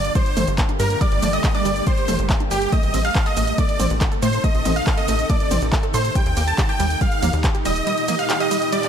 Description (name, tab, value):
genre	uplifting trance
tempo	140 BPM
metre	4/4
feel	straight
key	unclear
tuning	A4 = 445 Hz
part	supersaw chords	melody	0.0-8.9 s	G4 to A5	-24 LUFS	right 1 dB	sidechain pumping, tape echo
part	wide unison pluck	second line	0.0-8.9 s	G5 to A6	-31 LUFS	equal	cassette tape, sidechain pumping, digital delay
part	shimmering ambient pad	sustained chords	0.0-8.9 s	Bb2 to A4	-26 LUFS	right 1 dB	chorus, built-in reverb, sidechain pumping
part	tight sequencer bass	bass	0.0-7.8 s	Eb1 to A2	-23 LUFS	equal	sidechain pumping
part	punchy analog drum machine	drums	0.0-8.9 s	handclaps, hi-hat, ride cymbal, shaker, toms	-26 LUFS	equal	sidechain pumping on hats, sidechain pumping on cymbals, sidechain pumping on perc, sidechain pumping on toms
part	tight sequenced synth	arpeggios	0.2-8.8 s	G3 to A4	-29 LUFS	right 3 dB	chorus, sidechain pumping, digital delay
part	electronic kick drum	drums	0.2-7.5 s	none	-21 LUFS	equal	none
room	light reverb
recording	none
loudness	-17 LUFS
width	side -8 dB against mid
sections	0.0-8.9 A section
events	none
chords	0.0 Gmadd9; 2.7 Adim; 6.2 Eb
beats	0.15 0.58 | 1.01 1.44 1.87 2.30 | 2.73 3.15 3.58 4.01 | 4.44 4.87 5.30 5.72 | 6.15 6.58 7.01 7.44 | 7.87 8.30 8.72